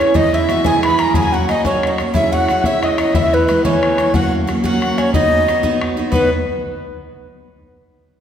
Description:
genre	celtic folk, Celtic jig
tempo	120 BPM (dotted quarters)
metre	6/8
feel	straight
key	B major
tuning	A4 = 440 Hz
part	baroque flute	melody	0.0-6.3 s	B4 to B5	-18 LUFS	equal	none
part	Irish bouzouki	second line	0.0-6.3 s	B3 to B4	-26 LUFS	right 2 dB	none
part	clear fiddle	second line	0.0-6.3 s	B4 to B5	-25 LUFS	left 3 dB	none
part	picked steel-string acoustic guitar	accompaniment	0.0-6.3 s	E3 to C#5	-18 LUFS	right 2 dB	none
part	bodhran	percussion	0.0-6.3 s	none	-20 LUFS	left 2 dB	none
room	wet concert hall reverb, RT60 2.3 s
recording	heard from further back in the room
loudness	-13 LUFS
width	side -9 dB against mid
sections	0.0-6.1 A section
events	none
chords	0.2 E; 1.2 F#; 2.1 C#m; 3.1 E; 4.1 F#; 5.1 Badd9

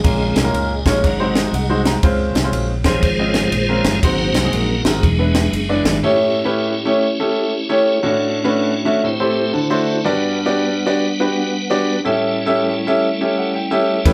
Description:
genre	uptempo gospel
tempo	120 BPM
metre	4/4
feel	swing 64% on 8ths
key	Db major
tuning	A4 = 441 Hz
part	clear baby grand piano	accompaniment	0.0-14.1 s	G2 to Bb5	-20 LUFS	equal	none
part	tonewheel organ	sustained chords	0.0-14.1 s	C3 to F#5	-23 LUFS	equal	slow rotary speaker, overdrive, chorus vibrato
part	fingered electric bass	bass	0.0-6.0, 14.1 s	E1 to Db2	-24 LUFS	equal	none
part	crisp fusion drum kit	drums	0.0-5.9, 14.1 s	kick drum, ride cymbal, snare drum	-22 LUFS	equal	none
room	moderate studio reverb, RT60 0.6 s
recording	band playing live in one room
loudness	-17 LUFS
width	mono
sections	0.0-6.0 A section; 6.0-14.1 A section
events	tonewheel organ solo 0.0-6.0; grand piano fill 1.0-2.0, 9.3-10.0, 13.0-14.1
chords	0.0 Bbm7; 1.0 Ab7; 2.0 Dbmaj7; 4.0 Ab7; 5.0 E7; 6.0 A7; 8.0 Dmaj7/A; 9.0 Am7; 9.5 D9; 10.0 Gmaj7; 12.0 A7

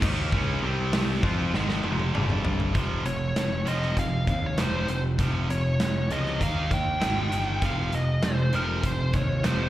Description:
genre	hard rock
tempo	99 BPM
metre	4/4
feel	straight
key	F minor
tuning	A4 = 436 Hz
part	high-gain distorted guitar	riff	0.0-9.7 s	F2 to F4	-29 LUFS	right 1 dB	distortion, slapback echo
part	modern bright picked electric bass	bass	0.0-9.7 s	F1 to F2	-28 LUFS	equal	none
part	big rock drum kit	drums	0.0-9.6 s	crash cymbal, hi-hat, kick drum, snare drum, toms	-28 LUFS	equal	none
part	nasal lead guitar with a parked wah	melody	3.1-9.7 s	Bb4 to G5	-30 LUFS	equal	overdrive, slapback echo
room	little or no reverb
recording	live gig heard through the venue's PA, recital hall reverb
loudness	-23 LUFS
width	side -14 dB against mid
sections	0.0-2.8 A section; 2.8-9.7 B section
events	drum fill 1.5-2.8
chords	0.0 Dbsus2; 0.6 C5; 1.2 Fm; 2.1 G5; 2.8 F5; 6.4 Eb5; 7.0 Ab5; 7.6 F5

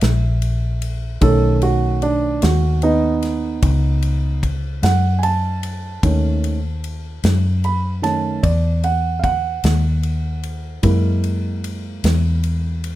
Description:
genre	slow blues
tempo	50 BPM (dotted quarters)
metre	12/8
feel	straight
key	B mixolydian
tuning	A4 = 439 Hz
part	dark baby grand piano	accompaniment	0.0-13.0 s	D#3 to B5	-21 LUFS	right 4 dB	none
part	vintage muted fingered electric bass	bass	0.0-13.0 s	A#1 to F#2	-18 LUFS	left 1 dB	none
part	natural country drum kit	drums	0.0-13.0 s	kick drum, ride cymbal, snare drum	-23 LUFS	equal	none
room	studio ambience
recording	rough home demo mix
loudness	-16 LUFS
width	side -15 dB against mid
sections	0.0-13.0 A section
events	grand piano solo 0.0-13.0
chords	0.0 N.C.; 1.2 B9; 10.8 F#9

